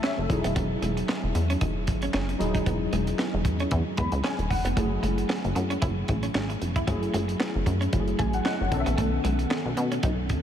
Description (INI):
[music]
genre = early-eighties boogie funk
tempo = 114 BPM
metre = 4/4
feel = swing 56% on 16ths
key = E major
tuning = A4 = 443 Hz
[part]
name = tine electric piano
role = accompaniment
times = 0.0-10.4 s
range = D#3 to B5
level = -30 LUFS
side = left 1 dB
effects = ensemble chorus
[part]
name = clean electric guitar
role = riff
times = 0.0-10.3 s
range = G#3 to E4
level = -33 LUFS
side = right 3 dB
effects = lush chorus
[part]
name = tight funk drum kit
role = drums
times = 0.0-10.4 s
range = handclaps, hi-hat, kick drum, snare drum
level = -30 LUFS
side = equal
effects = none
[part]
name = plucky analog bass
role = bass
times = 0.2-10.4 s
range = D#1 to B2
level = -28 LUFS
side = equal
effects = none
[sound]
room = moderate huge ambient reverb, RT60 7.9 s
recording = dreamy mix soaked in reverb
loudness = -24 LUFS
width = side -9 dB against mid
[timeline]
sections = 0.0-10.4 A section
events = tine electric piano fill 0.0-0.6, 3.7-4.8, 7.9-9.0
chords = 0.3 Emaj9; 4.8 F#m9; 8.7 B9